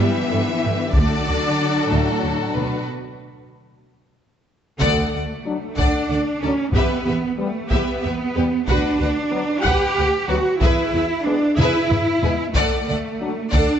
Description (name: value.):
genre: cinematic, epic orchestral film score.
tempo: 62 BPM (dotted quarters).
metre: 6/8.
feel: straight.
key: unclear.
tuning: A4 = 445 Hz.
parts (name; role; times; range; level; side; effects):
warm symphonic violin section; melody; 0.0-13.8 s; A4 to F#5; -28 LUFS; left 4 dB; none.
clear symphonic violin section; second line; 0.0-13.8 s; F#4 to D5; -27 LUFS; left 3 dB; none.
warm symphonic viola section; accompaniment; 0.0-13.8 s; D3 to F#5; -27 LUFS; right 1 dB; none.
warm French horn section; sustained chords; 0.0-13.3 s; D3 to D4; -29 LUFS; left 4 dB; none.
rich symphonic cello section; bass; 0.0-13.8 s; A2 to G4; -22 LUFS; right 2 dB; none.
warm symphonic double bass section; bass; 0.0-13.6 s; D2 to G2; -25 LUFS; right 2 dB; none.
taiko ensemble; drums; 0.9-1.5, 4.8-13.8 s; none; -22 LUFS; equal; none.
room: moderate scoring stage reverb, RT60 1.9 s.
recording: nothing above 8.0 kHz.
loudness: -18 LUFS.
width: side -9 dB against mid.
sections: 0.0-4.8 A section; 4.8-13.8 B section.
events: break 2.9-4.8; drum fill 3.8-4.8, 11.6-12.5; band accent 4.8-5.5.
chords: 0.0 G; 0.9 D; 6.7 Em; 8.7 Bm/D; 10.6 E; 12.5 D.